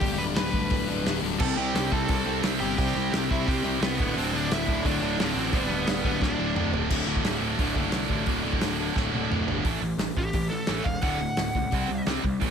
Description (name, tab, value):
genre	punk rock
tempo	174 BPM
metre	4/4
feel	straight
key	D mixolydian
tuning	A4 = 441 Hz
part	crunchy overdriven guitar	melody	0.0-6.7, 10.2-12.0 s	B3 to B5	-31 LUFS	right 1 dB	tape echo
part	sludgy distorted guitar	riff	0.0-12.5 s	D2 to C4	-31 LUFS	left 14 dB	overdrive
part	sludgy distorted guitar	riff	0.0-9.6 s	D2 to F#4	-32 LUFS	equal	overdrive
part	fuzz picked electric bass	bass	0.0-12.5 s	D1 to C#2	-32 LUFS	right 1 dB	overdrive
part	loose indie drum kit	drums	0.0-12.5 s	crash cymbal, hi-hat, kick drum, snare drum, toms	-29 LUFS	equal	none
part	distorted electric guitar	riff	1.4-12.5 s	D2 to C4	-31 LUFS	right 15 dB	overdrive
room	light reverb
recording	none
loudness	-24 LUFS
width	side -7 dB against mid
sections	0.0-6.9 A section; 6.9-9.6 B section; 9.6-12.5 C section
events	drum fill 6.2-6.9, 9.0-9.6; overdriven electric guitar solo 9.6-12.5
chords	0.0 G/D; 1.4 C5; 4.0 D5; 5.5 G/D; 6.2 D5; 6.9 D; 9.6 A5; 11.0 D; 11.7 C5